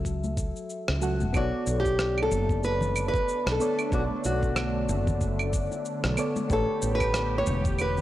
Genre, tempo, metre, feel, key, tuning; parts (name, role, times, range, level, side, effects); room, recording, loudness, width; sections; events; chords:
sunset chillout; 93 BPM; 4/4; swing 57% on 16ths; B minor; A4 = 439 Hz
nylon-string guitar; melody; 0.0-8.0 s; F#4 to C#5; -29 LUFS; equal; tape echo
mellow FM electric piano; accompaniment; 0.0-8.0 s; F#3 to F#5; -32 LUFS; equal; chorus, auto-pan, tape echo
woody fretless electric bass; bass; 0.0-8.0 s; E1 to C#2; -29 LUFS; equal; tube saturation
electronic kick drum; drums; 0.1-7.8 s; -30 LUFS; equal; overdrive, small room ambience
electronic shaker, rim click and claves; drums; 0.1-8.0 s; -33 LUFS; right 1 dB; overdrive, small room ambience
congas and bongos; percussion; 0.2-8.0 s; -36 LUFS; left 2 dB
lush unison pad; sustained chords; 1.4-8.0 s; D3 to G4; -35 LUFS; right 1 dB; chorus, phaser
light reverb, digital ambience; dry, gritty hardware recording, cassette tape; -24 LUFS; side -14 dB against mid
0.0-1.3 A section; 1.3-8.0 B section
0.0 F#m7; 1.3 Bm9; 6.5 A9